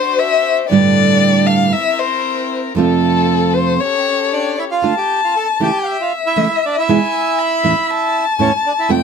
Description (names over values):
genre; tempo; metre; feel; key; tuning
tango; 117 BPM; 4/4; rubato; unclear; A4 = 440 Hz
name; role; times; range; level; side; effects
warm violin; second line; 0.0-9.0 s; A4 to B5; -16 LUFS; left 6 dB; none
warm chamber string section; stabs; 0.0-4.8 s; C4 to C5; -23 LUFS; left 4 dB; none
nylon-string guitar; accompaniment; 0.7-9.0 s; E2 to G4; -13 LUFS; right 5 dB; none
bandoneon; melody; 4.3-8.9 s; C#4 to A5; -18 LUFS; right 3 dB; none
room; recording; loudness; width
light reverb; close, detailed microphones; -13 LUFS; side -6 dB against mid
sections
0.0-4.8 A section; 4.8-9.0 B section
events
violin solo 0.0-4.8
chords
0.0 D7; 0.7 Gsus2; 1.7 C7; 2.8 F; 3.8 A7; 6.9 E; 7.9 A/E